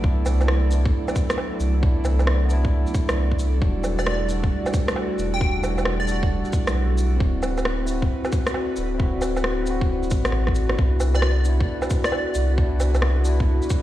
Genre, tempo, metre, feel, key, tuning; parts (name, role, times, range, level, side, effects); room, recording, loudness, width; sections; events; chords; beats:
future garage; 134 BPM; 4/4; swing 65% on 16ths; A4 = 440 Hz
tine electric piano; accompaniment; 0.0-13.8 s; G3 to F#4; -29 LUFS; left 1 dB; medium stereo tremolo, sidechain pumping, analog delay
airy breathy pad; sustained chords; 0.0-13.8 s; F#3 to D5; -30 LUFS; equal; chorus, sidechain pumping
warm sub bass; bass; 0.0-13.6 s; D1 to C2; -22 LUFS; equal; sidechain pumping
electronic kick drum; drums; 0.0-13.8 s; -21 LUFS; equal; overdrive, studio ambience
electronic shaker, woodblock, rim click and cabasa; drums; 0.3-13.8 s; -27 LUFS; right 1 dB; overdrive, studio ambience
plucky unison lead; melody; 4.0-6.2, 11.2-12.5 s; D5 to G5; -30 LUFS; right 2 dB; phaser, analog chorus, analog delay
light reverb, digital ambience; played on a big sound system in a bare room, stone room reverb; -19 LUFS; side -14 dB against mid
0.0-13.8 A section
drum fill 10.3-10.8
0.0 Cmaj7; 3.6 Em7; 7.2 D7; 10.8 Cmaj7
| 0.04 0.49 0.93 1.38 | 1.83 2.28 2.73 3.17 | 3.62 4.07 4.52 4.96 | 5.41 5.86 6.31 6.75 | 7.20 7.65 8.10 8.55 | 8.99 9.44 9.89 10.34 | 10.79 11.23 11.68 12.13 | 12.58 13.02 13.47